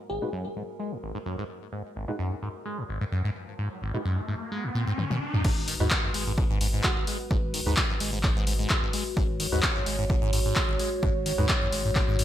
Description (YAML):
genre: acid house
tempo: 129 BPM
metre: 4/4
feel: swing 53% on 16ths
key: G# minor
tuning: A4 = 440 Hz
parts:
  - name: dark analog pad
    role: sustained chords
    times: 0.0-12.2 s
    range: G#3 to C#5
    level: -35 LUFS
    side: equal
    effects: wide subtle chorus, sidechain pumping
  - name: bell-like FM electric piano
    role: melody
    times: 0.1-0.6, 6.8-7.0 s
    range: F#4 to G#4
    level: -37 LUFS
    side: left 1 dB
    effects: chorus, phaser, vintage 12-bit sampler grit, digital delay
  - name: liquid acid bass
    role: riff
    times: 0.1-12.2 s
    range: G#1 to G#3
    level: -31 LUFS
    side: equal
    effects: phaser, ping-pong delay
  - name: percussive organ stab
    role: stabs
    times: 0.2-11.5 s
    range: G#3 to B4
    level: -36 LUFS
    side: equal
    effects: lush chorus, cassette tape, ping-pong delay
  - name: riser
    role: sound effects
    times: 3.1-5.4 s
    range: none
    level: -37 LUFS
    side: left 1 dB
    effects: none
  - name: punchy analog drum machine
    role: drums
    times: 5.0-12.2 s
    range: crash cymbal, handclaps, hi-hat, toms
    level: -29 LUFS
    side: left 1 dB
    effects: low-pass filter on toms, low-pass filter on cymbals, low-pass filter on hats, low-pass filter on snare, gated reverb
  - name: warm sub bass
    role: bass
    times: 5.4-12.2 s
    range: G#1 to D#2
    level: -31 LUFS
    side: equal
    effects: sidechain pumping
  - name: electronic kick drum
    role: drums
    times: 5.4-12.1 s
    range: none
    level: -28 LUFS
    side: equal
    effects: none
room: light reverb, digital ambience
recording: bright 1980s-style digital production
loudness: -25 LUFS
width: side -12 dB against mid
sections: 0.0-5.4 A section; 5.4-12.2 B section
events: filter sweep on analog synth pad 0.0-5.4; riser 3.1-5.4; drum fill 5.0-5.4; drop 5.4-12.2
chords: 0.0 G#7(no3); 5.4 G#m7